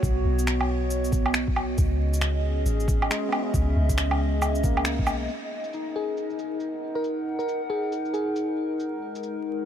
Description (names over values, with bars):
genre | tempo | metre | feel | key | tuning
future garage | 137 BPM | 4/4 | swing 62% on 16ths | unclear | A4 = 444 Hz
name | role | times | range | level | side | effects
barky tine electric piano | accompaniment | 0.0-8.8 s | G#3 to D#4 | -35 LUFS | left 2 dB | overdrive, sidechain pumping, low-pass filter, digital delay
warbly tape-like pad | sustained chords | 0.0-9.7 s | G#3 to F#5 | -29 LUFS | equal | chorus, built-in reverb, vintage 12-bit sampler grit, sidechain pumping
soft 808-style bass | bass | 0.0-5.3 s | G#1 to C#2 | -25 LUFS | equal | sidechain pumping
electronic kick drum | drums | 0.0-5.1 s | none | -25 LUFS | equal | none
electronic shaker, finger snaps and woodblock | drums | 0.0-9.3 s | none | -30 LUFS | right 1 dB | overdrive, low-pass filter on perc, low-pass filter on snare, low-pass filter on room
bell-like FM electric piano | melody | 6.0-8.8 s | G#4 to A#4 | -31 LUFS | equal | chorus, ping-pong delay
room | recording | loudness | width
light reverb, digital ambience | vinyl crackle | -23 LUFS | side -9 dB against mid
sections
0.0-5.3 A section; 5.3-9.7 B section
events
band accent 4.8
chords
0.0 B; 1.8 C#m7; 5.3 D#m7; 8.8 G#7(no3)